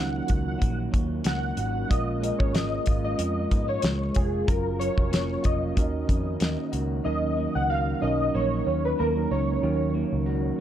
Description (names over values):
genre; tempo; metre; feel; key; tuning
indie pop, bedroom pop; 93 BPM; 4/4; swing 55% on 16ths; Eb minor; A4 = 440 Hz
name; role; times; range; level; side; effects
warbly lo-fi synth keys; melody; 0.0-9.9 s; Ab4 to Gb5; -30 LUFS; equal; ensemble chorus, tape echo, plate reverb
electric guitar through a small old amp; accompaniment; 0.0-10.6 s; Bb2 to Gb4; -32 LUFS; left 2 dB; wide subtle chorus, vibrato effect, plate reverb
mellow tine electric piano; accompaniment; 0.0-10.6 s; Gb3 to Bb4; -31 LUFS; right 6 dB; plate reverb
vintage muted picked electric bass; bass; 0.0-10.5 s; F1 to Ab2; -29 LUFS; equal; none
damped 70s drum kit; drums; 0.3-6.9 s; hi-hat, kick drum, snare drum; -25 LUFS; equal; none
room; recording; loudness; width
light reverb; dark, warm production; -23 LUFS; side -10 dB against mid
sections
0.0-7.1 A section; 7.1-10.6 B section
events
none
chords
0.0 Ebm7; 1.9 Bbm7; 4.5 Gbmaj7; 5.8 Ebm7